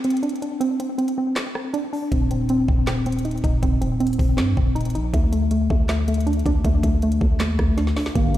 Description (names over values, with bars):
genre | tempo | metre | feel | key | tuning
hip hop, trap | 159 BPM | 4/4 | half-time | unclear | A4 = 441 Hz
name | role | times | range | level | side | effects
soft round pluck | arpeggios | 0.0-8.4 s | A3 to Eb4 | -23 LUFS | equal | chorus, low-pass filter, ping-pong delay
trap drum kit | drums | 0.0-8.4 s | handclaps, hi-hat, kick drum, rim click, snare drum | -23 LUFS | equal | none
growling 808-style bass | bass | 2.1-8.4 s | Eb1 to G2 | -22 LUFS | equal | none
dark French horn section | sustained chords | 8.2-8.4 s | D4 to F5 | -30 LUFS | left 2 dB | none
room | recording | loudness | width
little or no reverb | played on a big sound system in a bare room, stone room reverb | -19 LUFS | side -13 dB against mid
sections
0.0-8.2 A section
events
break 0.0-2.1; drum fill 7.8-8.2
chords
0.0 Csus2; 2.1 Eb5; 5.1 D5